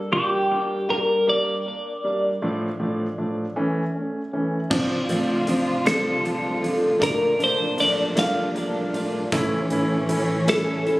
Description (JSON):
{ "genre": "six-eight pop ballad", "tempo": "52 BPM (dotted quarters)", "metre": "6/8", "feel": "straight", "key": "D minor", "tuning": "A4 = 440 Hz", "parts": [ { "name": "twelve-string electric guitar", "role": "melody", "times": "0.0-11.0 s", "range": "G4 to F5", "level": "-22 LUFS", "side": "equal", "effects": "phaser, ping-pong delay" }, { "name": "clear concert grand piano", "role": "accompaniment", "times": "0.1-11.0 s", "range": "A2 to E4", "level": "-25 LUFS", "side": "equal", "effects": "none" }, { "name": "muted studio string section", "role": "sustained chords", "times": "4.7-11.0 s", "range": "D2 to F4", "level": "-28 LUFS", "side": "equal", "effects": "none" }, { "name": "fingerpicked plugged-in steel-string acoustic guitar", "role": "arpeggios", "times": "4.7-11.0 s", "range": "E3 to F4", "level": "-31 LUFS", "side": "equal", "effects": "none" }, { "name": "huge arena drum kit", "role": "drums", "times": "4.7-11.0 s", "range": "crash cymbal, hi-hat, kick drum, snare drum", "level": "-29 LUFS", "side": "equal", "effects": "none" } ], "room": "moderate echo chamber reverb, RT60 1.8 s, studio reverb", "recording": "recorded on a phone in the room", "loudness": "-20 LUFS", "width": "side -18 dB against mid", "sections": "0.0-4.7 A section; 4.7-11.0 B section", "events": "none", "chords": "0.0 Gm; 2.4 Dm/A; 3.6 A; 4.7 Dm7; 7.0 Bbmaj7; 9.3 A" }